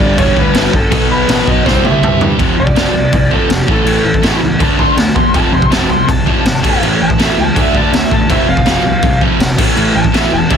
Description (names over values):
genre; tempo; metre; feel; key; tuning
punk rock; 163 BPM; 4/4; straight; unclear; A4 = 440 Hz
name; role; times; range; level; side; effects
lead guitar through a small cranked amp; melody; 0.0-10.6 s; G4 to C6; -17 LUFS; equal; overdrive
distorted electric guitar; riff; 0.0-10.6 s; F2 to D4; -18 LUFS; left 14 dB; distortion
sludgy distorted guitar; riff; 0.0-10.6 s; F2 to D4; -16 LUFS; right 14 dB; overdrive
fuzz picked electric bass; bass; 0.0-10.6 s; E1 to G2; -19 LUFS; equal; overdrive
raw garage drum kit; drums; 0.0-10.6 s; crash cymbal, kick drum, snare drum, toms; -13 LUFS; equal; none
room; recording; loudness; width
little or no reverb; dense, heavily limited modern master; -9 LUFS; side -7 dB against mid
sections
0.0-2.4 A section; 2.4-10.6 B section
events
drum fill 1.7-2.4; lead electric guitar solo 2.4-10.6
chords
0.0 G; 0.9 B5; 1.7 C; 2.4 F5; 3.7 A; 4.6 D5; 5.3 F; 6.6 A; 7.6 D5; 8.3 F5; 9.6 A5